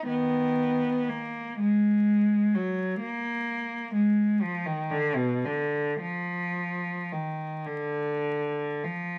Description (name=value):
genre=classical, free, expressive piece for unaccompanied cello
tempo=29-43 BPM (dotted quarters)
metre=6/8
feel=rubato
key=Eb minor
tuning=A4 = 442 Hz
part: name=rich cello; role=solo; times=0.0-9.2 s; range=Cb3 to Cb4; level=-28 LUFS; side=equal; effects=none
room=light reverb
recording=vinyl crackle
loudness=-28 LUFS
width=mono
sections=0.0-9.2 A section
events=none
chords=none